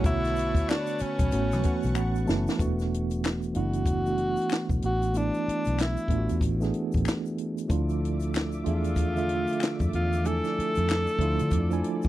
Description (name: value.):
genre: R&B, neo-soul.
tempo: 94 BPM.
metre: 4/4.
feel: swing 61% on 16ths.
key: unclear.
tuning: A4 = 442 Hz.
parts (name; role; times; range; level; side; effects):
warm tenor saxophone; melody; 0.0-12.1 s; C#4 to A4; -30 LUFS; left 1 dB; none.
mellow tine electric piano; accompaniment; 0.0-12.1 s; D3 to A5; -29 LUFS; right 3 dB; fast stereo tremolo.
lush unison pad; sustained chords; 0.0-2.6, 7.7-12.1 s; A3 to D6; -41 LUFS; left 1 dB; chorus.
vintage muted fingered electric bass; bass; 0.0-12.1 s; E1 to D3; -28 LUFS; left 1 dB; none.
compact cocktail drum kit; drums; 0.0-12.1 s; handclaps, hi-hat, kick drum, snare drum; -28 LUFS; left 1 dB; none.
egg shaker and finger snaps; percussion; 0.0-12.1 s; none; -43 LUFS; left 10 dB; none.
room: little or no reverb.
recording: dry, close 1970s-style studio recording.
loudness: -24 LUFS.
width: side -15 dB against mid.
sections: 0.0-2.6 A section; 2.6-12.1 B section.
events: tine electric piano fill 1.6-2.6; drum fill 2.0-2.6.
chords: 0.0 Bm9; 1.3 A69; 2.6 E9sus4; 7.7 Dmadd9.